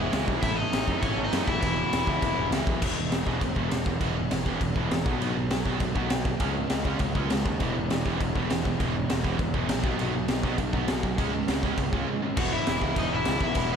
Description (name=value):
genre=punk rock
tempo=201 BPM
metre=4/4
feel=straight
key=E major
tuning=A4 = 439 Hz
part: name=overdriven semi-hollow guitar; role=melody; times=0.0-2.5, 12.4-13.8 s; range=G#3 to F#5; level=-30 LUFS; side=left 2 dB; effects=ping-pong delay
part: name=fuzz guitar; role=riff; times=0.0-13.8 s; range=E2 to C#4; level=-33 LUFS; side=right 2 dB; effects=distortion
part: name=raw garage guitar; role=riff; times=0.0-13.8 s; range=A2 to E4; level=-35 LUFS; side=left 13 dB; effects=overdrive
part: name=tight distorted guitar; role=riff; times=0.0-13.8 s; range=E2 to C#4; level=-33 LUFS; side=right 13 dB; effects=distortion
part: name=overdriven picked electric bass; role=bass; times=0.0-13.8 s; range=E1 to F#2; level=-32 LUFS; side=equal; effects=none
part: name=raw garage drum kit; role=drums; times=0.1-13.6 s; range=crash cymbal, kick drum, snare drum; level=-28 LUFS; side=equal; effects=none
room=light reverb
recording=none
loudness=-24 LUFS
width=side -7 dB against mid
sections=0.0-2.8 A section; 2.8-12.4 B section; 12.4-13.8 A section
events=none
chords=0.4 A; 1.6 E; 5.1 B; 6.4 C#5; 7.6 E; 9.8 B; 11.2 C#5; 12.4 E